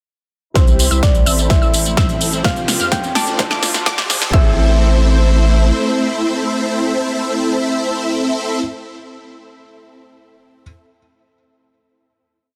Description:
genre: EDM, festival progressive house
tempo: 127 BPM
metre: 4/4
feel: straight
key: A minor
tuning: A4 = 439 Hz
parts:
  - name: felt-muted upright piano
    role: accompaniment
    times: 0.5-10.6 s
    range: A2 to C5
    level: -31 LUFS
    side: equal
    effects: sidechain pumping, delay
  - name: thumb-piano-like synth pluck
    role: melody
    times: 0.6-8.6 s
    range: C5 to A5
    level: -26 LUFS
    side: equal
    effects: chorus, delay
  - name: dark chamber string section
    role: sustained chords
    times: 0.6-8.6 s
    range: C3 to C5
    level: -28 LUFS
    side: equal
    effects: sidechain pumping, low-pass filter
  - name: unison pluck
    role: arpeggios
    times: 0.6-8.6 s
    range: D6 to F6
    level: -28 LUFS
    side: equal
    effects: sidechain pumping, delay
  - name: supersaw chords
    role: riff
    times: 0.6-8.6 s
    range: C4 to F5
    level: -23 LUFS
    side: equal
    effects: ensemble chorus, sidechain pumping, low-pass filter, delay
  - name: saturated sub bass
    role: bass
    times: 0.6-5.7 s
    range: F1 to F2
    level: -19 LUFS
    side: equal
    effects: sidechain pumping
  - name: big-room dance drum kit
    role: drums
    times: 0.6-4.3 s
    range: hi-hat, snare drum, tambourine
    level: -22 LUFS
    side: equal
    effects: none
  - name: electronic kick drum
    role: drums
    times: 0.6-4.4 s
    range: none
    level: -17 LUFS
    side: equal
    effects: none
  - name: riser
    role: sound effects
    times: 2.2-4.3 s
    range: none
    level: -32 LUFS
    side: equal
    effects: none
room: light reverb, digital ambience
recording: dense, heavily limited modern master, high-pass filter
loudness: -15 LUFS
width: mono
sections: 0.6-4.3 build; 4.3-8.1 final chord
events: build-up 0.6-4.3; drum fill 0.6-4.3; filter sweep on supersaw synth 0.6-4.3; filter sweep 0.6-4.3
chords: 0.6 C; 1.5 Am; 2.4 Fsus2; 3.4 Dm7; 4.3 Am

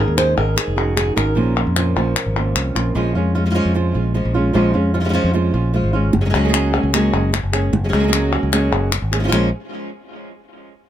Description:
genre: flamenco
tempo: 151 BPM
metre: 4/4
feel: straight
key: Bb minor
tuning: A4 = 441 Hz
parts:
  - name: flamenco guitar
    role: melody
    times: 0.0-9.5 s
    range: F2 to C5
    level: -20 LUFS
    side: equal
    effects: tape echo
  - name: flamenco guitar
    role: stabs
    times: 0.0-9.5 s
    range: Bb2 to Ab4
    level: -23 LUFS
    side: right 6 dB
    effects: none
  - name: fingered electric bass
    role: bass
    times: 0.0-9.5 s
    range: F1 to F2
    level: -19 LUFS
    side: equal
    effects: none
  - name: palmas hand claps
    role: percussion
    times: 0.2-3.0, 6.3-9.4 s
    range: none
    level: -22 LUFS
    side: left 6 dB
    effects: none
room: little or no reverb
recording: close, detailed microphones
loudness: -15 LUFS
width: side -11 dB against mid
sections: 0.0-3.0 A section; 3.0-9.3 B section; 9.3-10.9 C section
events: none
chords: 0.0 Absus4; 1.4 Bbm; 3.0 Bbm7; 6.1 Gbadd9; 9.3 Bbm7

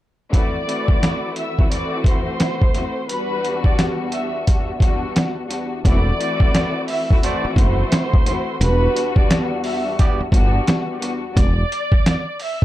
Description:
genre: hip hop, boom-bap hip-hop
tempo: 87 BPM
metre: 4/4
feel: swing 63% on 16ths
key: unclear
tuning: A4 = 440 Hz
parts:
  - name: warm studio violin section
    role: melody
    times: 0.3-12.6 s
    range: B4 to E6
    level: -25 LUFS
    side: equal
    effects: high-pass filter, low-pass filter, plate reverb, tape echo
  - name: warm studio string section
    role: accompaniment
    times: 0.3-11.3 s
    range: E2 to F#4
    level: -24 LUFS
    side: left 2 dB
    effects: cassette tape, high-pass filter, low-pass filter, plate reverb
  - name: trip hop sampler-style drum kit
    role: drums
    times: 0.3-12.6 s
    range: hi-hat, kick drum, snare drum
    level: -17 LUFS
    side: equal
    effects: overdrive
  - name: woody fretless electric bass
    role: bass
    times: 5.8-11.6 s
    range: E1 to G1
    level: -18 LUFS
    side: equal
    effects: none
  - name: warm trumpet section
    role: stabs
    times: 7.2-10.2 s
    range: A3 to D5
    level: -30 LUFS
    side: right 5 dB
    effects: high-pass filter, low-pass filter, plate reverb, tape echo
room: light reverb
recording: dark, warm production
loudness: -16 LUFS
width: side -14 dB against mid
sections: 0.3-5.8 A section; 5.8-12.6 B section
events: none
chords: 0.3 D7/E; 3.1 Em7; 5.8 D7/E; 8.6 Em7; 11.4 N.C.

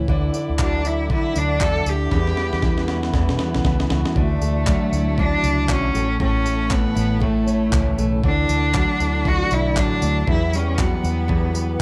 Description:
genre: acoustic pop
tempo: 118 BPM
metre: 4/4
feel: swing 60% on 16ths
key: D major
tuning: A4 = 440 Hz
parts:
  - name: fingerpicked twelve-string acoustic guitar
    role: accompaniment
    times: 0.0-11.8 s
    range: E2 to F#4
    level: -25 LUFS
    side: equal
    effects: none
  - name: vintage muted fingered electric bass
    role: bass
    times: 0.0-11.8 s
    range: A1 to D3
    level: -25 LUFS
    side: equal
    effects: none
  - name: mellow tonewheel organ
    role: sustained chords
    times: 0.1-11.8 s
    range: G3 to D6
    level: -36 LUFS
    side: equal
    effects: chorus vibrato, stopped rotary speaker
  - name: breakbeat sampler-style drum kit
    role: drums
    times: 0.1-11.7 s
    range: handclaps, kick drum, snare drum, tambourine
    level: -26 LUFS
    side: equal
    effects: none
  - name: clear cello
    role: melody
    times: 0.6-11.8 s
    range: A3 to A4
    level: -26 LUFS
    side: equal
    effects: none
room: light reverb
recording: none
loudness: -20 LUFS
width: mono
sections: 0.0-4.2 A section; 4.2-11.8 B section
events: drum fill 2.1-4.2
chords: 0.1 Dadd9; 2.1 Emadd9; 4.2 Dadd9; 5.9 A; 8.2 Dadd9; 10.3 Emadd9

